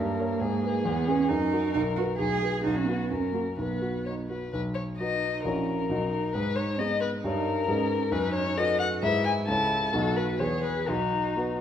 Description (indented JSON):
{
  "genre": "quick classical-period movement for piano trio",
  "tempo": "123-137 BPM",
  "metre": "2/4",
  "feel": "rubato",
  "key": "B major",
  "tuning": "A4 = 436 Hz",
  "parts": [
    { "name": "dark violin", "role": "melody", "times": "0.0-11.6 s", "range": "D#4 to A5", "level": "-29 LUFS", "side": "left 6 dB", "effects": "none" },
    { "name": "dark cello", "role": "second line", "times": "0.0-11.6 s", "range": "A#3 to G#4", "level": "-31 LUFS", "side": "right 6 dB", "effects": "none" },
    { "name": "warm grand piano", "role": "accompaniment", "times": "0.0-11.6 s", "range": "A#1 to D#5", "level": "-29 LUFS", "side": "equal", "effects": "none" }
  ],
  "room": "wet recital hall reverb, RT60 1.5 s",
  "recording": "none",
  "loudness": "-25 LUFS",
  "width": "side -9 dB against mid",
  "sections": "0.0-4.5 A section; 4.5-11.6 A section",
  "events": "none",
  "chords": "0.4 G#m; 0.8 E; 1.3 F#; 1.7 B5; 2.2 G#m/B; 2.6 B5; 3.1 F#; 3.6 B; 5.5 F#7/A#; 5.9 B; 6.4 G#m; 7.2 D#7/G; 7.7 G#m; 8.1 B7/F#; 9.0 E/G#; 9.5 A/C#; 9.9 B; 10.4 E; 10.9 B"
}